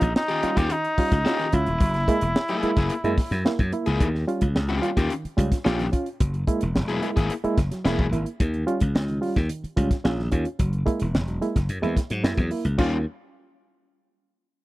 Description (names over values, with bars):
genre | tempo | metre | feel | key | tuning
funk | 109 BPM | 4/4 | straight | unclear | A4 = 442 Hz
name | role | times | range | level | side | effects
mellow cor anglais | melody | 0.0-3.5 s | Eb4 to G4 | -26 LUFS | equal | none
barky reed electric piano | stabs | 0.0-13.0 s | Eb3 to F4 | -27 LUFS | right 2 dB | overdrive, fast tremolo
slap bass | bass | 0.0-13.0 s | Eb1 to Ab2 | -25 LUFS | equal | none
tight funk drum kit | drums | 0.0-12.9 s | crash cymbal, hi-hat, kick drum, snare drum | -24 LUFS | equal | none
overdriven electric guitar | accompaniment | 0.3-8.1, 12.8-13.0 s | Bb3 to Ab4 | -28 LUFS | left 4 dB | none
room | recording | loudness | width
small room reverb | dry, close 1970s-style studio recording | -21 LUFS | side -18 dB against mid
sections
0.0-4.0 A section; 4.0-12.8 B section; 12.8-14.6 C section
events
none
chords
0.0 Eb9; 1.8 Gb9; 4.0 Eb9; 6.2 Gb9; 8.4 Eb9; 10.6 Gb9; 12.8 Eb9